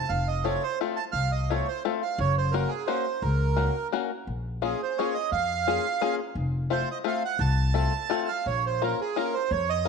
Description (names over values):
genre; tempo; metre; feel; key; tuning
musette waltz; 172 BPM; 3/4; straight; Bb minor; A4 = 441 Hz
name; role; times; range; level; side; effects
bandoneon; melody; 0.0-9.9 s; Ab4 to A5; -28 LUFS; right 8 dB; none
upright bass; bass; 0.0-9.9 s; F1 to F2; -27 LUFS; left 1 dB; none
bluegrass banjo; accompaniment; 0.4-9.9 s; A3 to Bb4; -30 LUFS; left 11 dB; none
room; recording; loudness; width
moderate echo chamber reverb, RT60 1.4 s; 1960s-style stereo with parts hard left and right; -24 LUFS; side -5 dB against mid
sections
0.0-9.9 A section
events
none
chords
0.0 F; 2.2 Gb; 4.3 Bbm7; 6.4 F; 8.5 Bbm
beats
| 0.10 0.45 0.80 | 1.14 1.49 1.84 | 2.18 2.53 2.87 | 3.22 3.57 3.92 | 4.27 4.62 4.97 | 5.32 5.67 6.02 | 6.36 6.71 7.05 | 7.40 7.75 8.10 | 8.46 8.81 9.16 | 9.51 9.86